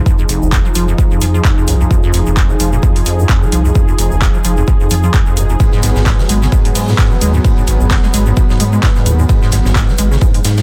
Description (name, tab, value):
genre	acid house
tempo	130 BPM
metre	4/4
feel	swing 56% on 16ths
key	F minor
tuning	A4 = 440 Hz
part	warm analog pad	sustained chords	0.0-10.6 s	F3 to Ab4	-22 LUFS	equal	subtle chorus, sidechain pumping
part	acid bass, square	riff	0.1-10.6 s	F1 to Ab3	-20 LUFS	equal	lush chorus, sidechain pumping, tape echo
part	electronic kick drum	drums	0.1-10.3 s	none	-15 LUFS	equal	small room reverb
part	egg shaker	percussion	0.1-10.6 s	none	-33 LUFS	equal	none
part	round analog bass	bass	0.3-10.6 s	F1 to Ab2	-16 LUFS	equal	sidechain pumping
part	booming analog drum machine	drums	0.3-10.5 s	handclaps, hi-hat	-22 LUFS	equal	small room reverb
part	loose indie drum kit	drums	5.6-10.6 s	hi-hat, ride cymbal, snare drum	-31 LUFS	equal	sidechain pumping on cymbals, high-pass filter on cymbals, small room reverb, sidechain pumping on hats, high-pass filter on hats, soft clipping on snare, high-pass filter on snare, high-pass filter on room
room	small room ambience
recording	dense, heavily limited modern master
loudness	-12 LUFS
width	mono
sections	0.0-10.6 A section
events	none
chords	0.0 Fm7; 5.6 Abm7